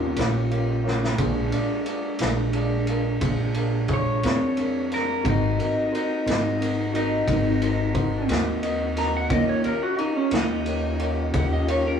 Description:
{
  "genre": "slow blues",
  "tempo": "59 BPM (dotted quarters)",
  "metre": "12/8",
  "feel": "straight",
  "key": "unclear",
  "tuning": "A4 = 438 Hz",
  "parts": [
    { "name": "electric guitar through a small old amp", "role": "melody", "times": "0.0-12.0 s", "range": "Db4 to Bb5", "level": "-26 LUFS", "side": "left 1 dB", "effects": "none" },
    { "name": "warm upright piano", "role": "accompaniment", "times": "0.0-11.9 s", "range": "D4 to Eb5", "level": "-30 LUFS", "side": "equal", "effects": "none" },
    { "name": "mellow tonewheel organ", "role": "sustained chords", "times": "0.0-12.0 s", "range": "G3 to G4", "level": "-31 LUFS", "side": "left 1 dB", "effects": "chorus vibrato, slow rotary speaker" },
    { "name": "upright bass", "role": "bass", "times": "0.0-12.0 s", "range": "Ab1 to F2", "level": "-25 LUFS", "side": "equal", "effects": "none" },
    { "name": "vintage drum kit", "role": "drums", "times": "0.2-11.8 s", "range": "kick drum, ride cymbal, snare drum", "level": "-29 LUFS", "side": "equal", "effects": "none" },
    { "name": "electric slide guitar", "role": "second line", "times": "11.4-12.0 s", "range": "Bb4 to Gb5", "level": "-27 LUFS", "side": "left 1 dB", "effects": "none" }
  ],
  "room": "light reverb",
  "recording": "rough rehearsal-room recording, small room reverb",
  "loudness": "-21 LUFS",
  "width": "side -7 dB against mid",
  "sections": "0.0-12.0 A section",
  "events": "drum fill 0.8-1.2",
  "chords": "0.0 Eb9 (rootless); 1.2 Bb9; 5.3 Ab9; 9.3 Eb9",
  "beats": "0.17 | 1.19 2.20 3.22 4.24 | 5.25 6.27 7.29 8.30 | 9.32 10.33 11.35"
}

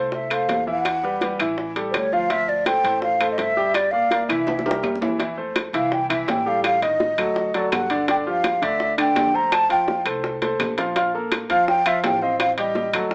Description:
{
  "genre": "Afro-Cuban jazz",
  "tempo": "166 BPM",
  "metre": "4/4",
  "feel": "straight",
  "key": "unclear",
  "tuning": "A4 = 441 Hz",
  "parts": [
    { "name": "mellow hollow concert flute", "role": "melody", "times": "0.0-13.1 s", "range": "C5 to Bb5", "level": "-20 LUFS", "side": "equal", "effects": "none" },
    { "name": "clear grand piano", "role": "accompaniment", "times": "0.0-13.1 s", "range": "D3 to G5", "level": "-24 LUFS", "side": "equal", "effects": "none" },
    { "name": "upright bass", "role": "bass", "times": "0.0-13.1 s", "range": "G1 to F2", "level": "-37 LUFS", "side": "equal", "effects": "none" },
    { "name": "bongos", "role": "percussion", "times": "0.1-13.1 s", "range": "none", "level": "-29 LUFS", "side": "equal", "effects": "none" },
    { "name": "claves", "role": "percussion", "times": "0.3-13.1 s", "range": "none", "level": "-29 LUFS", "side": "equal", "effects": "none" },
    { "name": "timbales", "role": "percussion", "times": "0.3-13.1 s", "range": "none", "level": "-27 LUFS", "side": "equal", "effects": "none" }
  ],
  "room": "moderate club reverb, RT60 0.6 s",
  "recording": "small speaker sound",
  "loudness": "-18 LUFS",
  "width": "side -37 dB against mid",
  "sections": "0.0-5.2 A section; 5.2-13.1 B section",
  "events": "drum fill 4.5-5.2, 10.4-11.0",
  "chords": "0.0 Fmaj7; 0.9 Em; 1.6 A5; 2.3 Dm9; 3.8 Gm7; 4.5 C7; 5.2 Fmaj9; 6.6 F13b9/A; 7.4 D; 8.1 Gsus2; 9.5 Fadd9; 11.0 Bbsus2; 12.4 Am7b5",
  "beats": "0.13 0.49 | 0.85 1.22 1.58 1.94 | 2.30 2.66 3.03 3.39 | 3.75 4.11 4.47 4.83 | 5.20 5.56 5.92 6.28 | 6.64 7.00 7.36 7.72 | 8.08 8.44 8.80 9.16 | 9.52 9.88 10.24 10.60 | 10.96 11.32 11.68 12.04 | 12.40 12.76 13.12"
}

